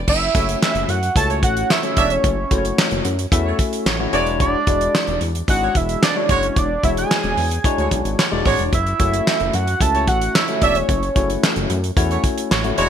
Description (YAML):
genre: early-eighties boogie funk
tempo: 111 BPM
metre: 4/4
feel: straight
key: unclear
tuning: A4 = 440 Hz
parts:
  - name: fat analog bass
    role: bass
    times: 0.0-12.9 s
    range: E1 to F#2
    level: -23 LUFS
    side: equal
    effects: none
  - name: fat analog lead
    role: melody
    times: 0.1-11.3 s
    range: C#5 to A5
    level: -22 LUFS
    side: right 2 dB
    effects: ping-pong delay
  - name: damped 70s drum kit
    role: drums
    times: 0.1-12.9 s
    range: crash cymbal, handclaps, hi-hat, kick drum, snare drum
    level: -20 LUFS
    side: equal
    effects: gated reverb
  - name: barky tine electric piano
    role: accompaniment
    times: 0.3-12.9 s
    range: F#3 to E5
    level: -24 LUFS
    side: left 4 dB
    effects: analog chorus
  - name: warm horn section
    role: second line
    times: 1.3-12.9 s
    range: G#3 to E5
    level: -24 LUFS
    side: right 4 dB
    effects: none
room: light reverb, small room ambience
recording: bright 1980s-style digital production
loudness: -16 LUFS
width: side -8 dB against mid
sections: 0.1-12.9 A section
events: none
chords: 0.1 F#m7; 4.1 E13; 8.7 F#m7